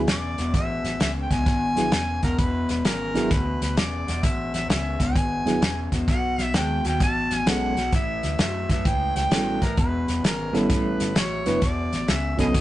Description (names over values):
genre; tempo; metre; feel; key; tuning
electric blues shuffle; 130 BPM; 4/4; swing 66% on 8ths; E mixolydian; A4 = 440 Hz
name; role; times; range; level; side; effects
reed electric piano; accompaniment; 0.0-12.6 s; F#3 to B4; -24 LUFS; right 1 dB; fast tremolo
electric guitar through a small old amp; riff; 0.0-12.6 s; E2 to G#3; -28 LUFS; left 2 dB; warbly pitch drift
vintage muted fingered electric bass; bass; 0.0-12.6 s; E1 to F#2; -29 LUFS; equal; none
warm harmonica; melody; 0.1-12.6 s; G#4 to A5; -28 LUFS; equal; overdrive
warm soul drum kit; drums; 0.1-12.6 s; hi-hat, kick drum, snare drum; -24 LUFS; equal; none
room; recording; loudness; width
moderate studio reverb, RT60 0.7 s; rough rehearsal-room recording, tube saturation, nothing above 10.4 kHz; -21 LUFS; side -15 dB against mid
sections
0.0-12.6 A section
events
none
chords
0.0 E7; 6.1 B9; 7.9 A9; 9.8 E; 10.7 A9; 11.6 Esus2